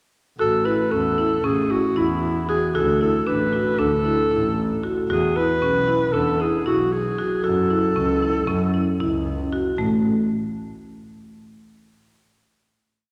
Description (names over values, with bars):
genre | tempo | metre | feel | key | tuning
contemporary instrumental, chamber music in an uneven meter | 230 BPM (eighths) | 9/8 | straight | A major | A4 = 440 Hz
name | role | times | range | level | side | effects
mellow clarinet | melody | 0.4-9.3 s | E4 to B4 | -24 LUFS | equal | none
marimba with medium hard mallets | arpeggios | 0.4-10.0 s | A3 to F#4 | -26 LUFS | equal | none
dark double bass | bass | 0.4-10.0 s | A1 to F#2 | -27 LUFS | equal | none
room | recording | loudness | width
wet concert hall reverb, RT60 2.4 s | none | -21 LUFS | mono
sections
0.4-9.8 A section; 9.8-12.1 final note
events
none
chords
0.4 A; 2.8 D; 5.1 E; 7.4 F#m7; 9.8 N.C.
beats
| 0.40 0.66 0.92 1.18 1.45 1.71 1.97 2.23 2.49 | 2.75 3.01 3.27 3.53 3.79 4.05 4.32 4.58 4.84 | 5.10 5.36 5.62 5.88 6.14 6.40 6.66 6.92 7.18 | 7.44 7.70 7.96 8.22 8.48 8.74 9.00 9.27 9.53 | 9.79